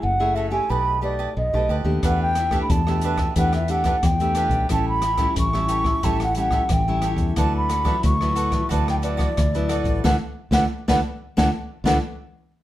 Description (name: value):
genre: samba and choro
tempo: 90 BPM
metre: 4/4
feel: straight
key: D major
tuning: A4 = 439 Hz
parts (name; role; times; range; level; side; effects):
- baroque flute; melody; 0.0-12.0 s; D5 to C#6; -23 LUFS; right 1 dB; none
- nylon-string guitar; accompaniment; 0.0-12.0 s; A2 to G#4; -28 LUFS; left 2 dB; none
- fingered electric bass; bass; 0.0-12.0 s; F#1 to E2; -24 LUFS; equal; none
- cavaquinho; accompaniment; 0.2-12.0 s; D4 to A5; -31 LUFS; right 5 dB; none
- open jazz drum kit; drums; 2.0-12.0 s; hi-hat, kick drum, rim click, snare drum; -24 LUFS; equal; none
room: moderate studio reverb, RT60 0.7 s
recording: band playing live in one room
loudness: -19 LUFS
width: side -14 dB against mid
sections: 0.0-12.6 A section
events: band accent 10.0-12.6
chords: 0.0 F#m9; 0.7 B7alt; 2.0 Em7; 4.7 A7; 7.4 D69